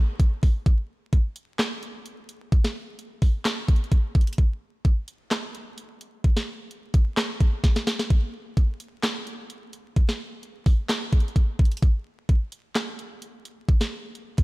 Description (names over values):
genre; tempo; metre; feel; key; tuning
hip hop; 129 BPM; 4/4; half-time; none; none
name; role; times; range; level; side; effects
trap drum kit; drums; 0.2-14.4 s; handclaps, hi-hat, kick drum, snare drum; -21 LUFS; equal; none
room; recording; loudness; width
little or no reverb; vinyl crackle; -22 LUFS; side -22 dB against mid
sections
0.0-8.1 A section; 8.1-14.4 B section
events
drum fill 7.6-8.1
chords
none